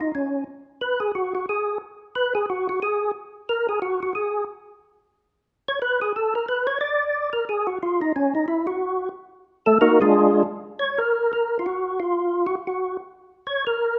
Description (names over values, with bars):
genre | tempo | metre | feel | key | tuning
jazz | 180 BPM | 4/4 | swing 62% on 8ths | unclear | A4 = 441 Hz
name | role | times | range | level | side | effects
percussive tonewheel organ | solo | 0.0-14.0 s | Ab3 to D5 | -23 LUFS | equal | chorus vibrato, slow rotary speaker
room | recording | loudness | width
moderate large studio reverb, RT60 1.3 s | none | -23 LUFS | mono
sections
0.0-10.8 A section; 10.8-14.0 B section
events
tonewheel organ solo 0.0-10.8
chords
0.0 N.C.; 8.1 Ebm; 10.1 Ddim/Ab; 10.8 N.C.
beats
| 0.11 0.45 0.78 1.11 | 1.45 1.78 2.12 2.45 | 2.78 3.12 3.45 3.78 | 4.12 4.45 4.78 5.12 | 5.45 5.78 6.12 6.45 | 6.78 7.12 7.45 7.78 | 8.11 8.45 8.78 9.11 | 9.45 9.78 10.11 10.45 | 10.78 11.11 11.44 11.78 | 12.11 12.44 12.78 13.11 | 13.44 13.77